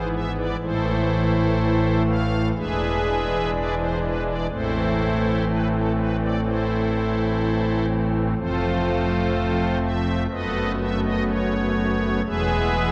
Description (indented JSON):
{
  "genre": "classical, chorale-style piece for pipe organ",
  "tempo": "62 BPM",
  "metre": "4/4",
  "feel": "straight",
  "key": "A minor",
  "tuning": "A4 = 440 Hz",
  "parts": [
    { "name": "pipe organ, strings celeste", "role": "solo", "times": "0.0-12.9 s", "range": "E1 to F5", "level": "-23 LUFS", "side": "equal", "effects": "none" }
  ],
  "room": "wet cathedral reverb, RT60 4.3 s",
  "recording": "none",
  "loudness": "-23 LUFS",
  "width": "mono",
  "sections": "0.0-12.9 A section",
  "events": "none",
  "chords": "0.0 E/G#; 0.6 Am; 2.5 E7; 4.5 Am; 8.4 F; 10.3 B5/F#; 12.3 E"
}